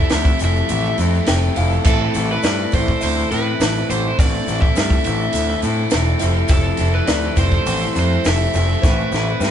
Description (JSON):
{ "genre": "indie rock", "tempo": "103 BPM", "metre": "4/4", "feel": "straight", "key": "A minor", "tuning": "A4 = 440 Hz", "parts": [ { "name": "overdriven semi-hollow guitar", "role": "melody", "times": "0.0-9.5 s", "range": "A4 to E5", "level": "-24 LUFS", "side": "right 1 dB", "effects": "analog delay" }, { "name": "delicate synth tine bell", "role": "second line", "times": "0.0-9.5 s", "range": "B4 to G5", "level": "-29 LUFS", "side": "left 2 dB", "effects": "chorus" }, { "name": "tonewheel organ", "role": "sustained chords", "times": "0.0-9.5 s", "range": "F3 to E5", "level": "-33 LUFS", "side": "right 1 dB", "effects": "none" }, { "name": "electric guitar through a small old amp", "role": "riff", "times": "0.0-9.5 s", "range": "A3 to B4", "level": "-23 LUFS", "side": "left 5 dB", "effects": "spring reverb" }, { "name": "overdriven electric guitar", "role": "riff", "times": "0.0-9.5 s", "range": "A2 to E4", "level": "-26 LUFS", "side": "right 5 dB", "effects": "none" }, { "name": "growling picked electric bass", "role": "bass", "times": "0.0-9.5 s", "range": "E1 to A2", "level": "-20 LUFS", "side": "equal", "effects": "overdrive" }, { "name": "compact cocktail drum kit", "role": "drums", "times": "0.1-9.5 s", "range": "crash cymbal, hi-hat, kick drum, snare drum", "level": "-19 LUFS", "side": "equal", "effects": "none" }, { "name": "tube shaker", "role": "percussion", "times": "0.1-9.5 s", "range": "none", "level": "-36 LUFS", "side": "left 6 dB", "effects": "none" } ], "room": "wet studio reverb, RT60 0.6 s", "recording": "band playing live in one room, nothing above 10.4 kHz", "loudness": "-15 LUFS", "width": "side -9 dB against mid", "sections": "0.0-9.5 A section", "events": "drum fill 8.8-9.5", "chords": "0.0 Fmaj7; 1.9 Am; 6.2 Fmaj7; 8.8 Amadd9", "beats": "0.11 0.69 1.27 | 1.85 2.43 3.02 3.60 | 4.18 4.76 5.34 5.92 | 6.51 7.09 7.67 8.25 | 8.83 9.42" }